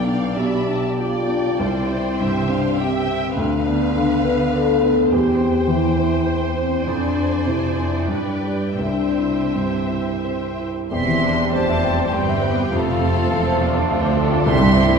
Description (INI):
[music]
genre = classical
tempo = 81-105 BPM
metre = 3/4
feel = rubato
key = C major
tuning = A4 = 440 Hz
[part]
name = warm baby grand piano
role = melody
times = 0.0-15.0 s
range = B1 to C6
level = -21 LUFS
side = equal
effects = none
[part]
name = warm symphonic violin section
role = melody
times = 0.0-15.0 s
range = F5 to C6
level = -31 LUFS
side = left 3 dB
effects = none
[part]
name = warm symphonic violin section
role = second line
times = 0.0-15.0 s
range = F4 to G5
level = -30 LUFS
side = left 3 dB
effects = none
[part]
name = warm symphonic viola section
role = accompaniment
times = 0.0-15.0 s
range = G3 to E5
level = -28 LUFS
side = right 3 dB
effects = none
[part]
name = mellow French horn section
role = sustained chords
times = 0.0-15.0 s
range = F3 to B4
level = -23 LUFS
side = left 4 dB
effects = none
[part]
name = warm symphonic cello section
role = bass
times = 0.0-15.0 s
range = C2 to D3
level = -27 LUFS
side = right 4 dB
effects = none
[part]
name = bright small flute group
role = second line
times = 10.9-15.0 s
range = A4 to E5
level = -25 LUFS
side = right 1 dB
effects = none
[part]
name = warm clarinet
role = second line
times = 10.9-15.0 s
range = E4 to G4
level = -30 LUFS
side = right 2 dB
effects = none
[part]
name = mellow bassoon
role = accompaniment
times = 10.9-15.0 s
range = G3 to A3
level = -28 LUFS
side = right 3 dB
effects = none
[part]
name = rich symphonic double bass section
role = bass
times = 10.9-15.0 s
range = E1 to D2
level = -26 LUFS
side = right 3 dB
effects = none
[part]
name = timpani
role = percussion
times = 14.5-15.0 s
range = none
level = barely audible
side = none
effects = none
[sound]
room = wet scoring stage reverb, RT60 1.4 s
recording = heard from further back in the room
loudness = -17 LUFS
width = side -6 dB against mid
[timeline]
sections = 0.0-10.9 A section; 10.9-15.0 B section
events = none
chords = 0.0 G7/B; 1.6 C; 3.4 Bdim/D; 5.1 C/E; 6.9 Dm7b5/F; 8.1 G; 8.8 C; 10.9 C/E; 12.7 F; 14.5 C